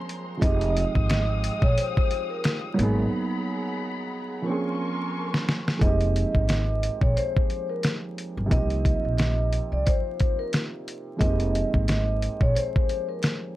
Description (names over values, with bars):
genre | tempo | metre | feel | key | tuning
hip hop, boom-bap hip-hop | 89 BPM | 4/4 | swing 57% on 16ths | F minor | A4 = 445 Hz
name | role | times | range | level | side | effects
dark baby grand piano | accompaniment | 0.0-13.6 s | F2 to Ab4 | -30 LUFS | right 2 dB | cassette tape, high-pass filter, low-pass filter
warm studio string section | sustained chords | 0.0-5.8 s | Ab3 to Eb6 | -35 LUFS | left 3 dB | high-pass filter, low-pass filter
dusty soul sampler-style drum kit | drums | 0.1-13.4 s | hi-hat, kick drum, snare drum | -24 LUFS | equal | none
vibraphone with soft mallets | melody | 0.4-13.2 s | Bb4 to Eb5 | -30 LUFS | right 1 dB | high-pass filter, low-pass filter, tape echo
upright bass | bass | 0.4-12.5 s | F1 to C2 | -25 LUFS | equal | none
finger snaps | percussion | 1.1-2.6 s | none | -40 LUFS | left 2 dB | none
room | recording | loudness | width
light reverb | vinyl crackle | -22 LUFS | side -16 dB against mid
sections
0.0-5.8 A section; 5.8-13.6 B section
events
break 3.1-5.8; drum fill 4.5-5.8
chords
0.4 Fm9; 2.8 Abm9; 4.5 Bbm9; 5.8 Fm11; 8.5 Cm7; 11.2 Fm11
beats
| 0.42 1.10 1.77 2.44 | 3.12 3.79 4.47 5.14 | 5.82 6.49 7.16 7.84 | 8.51 9.19 9.86 10.53 | 11.21 11.88 12.56 13.23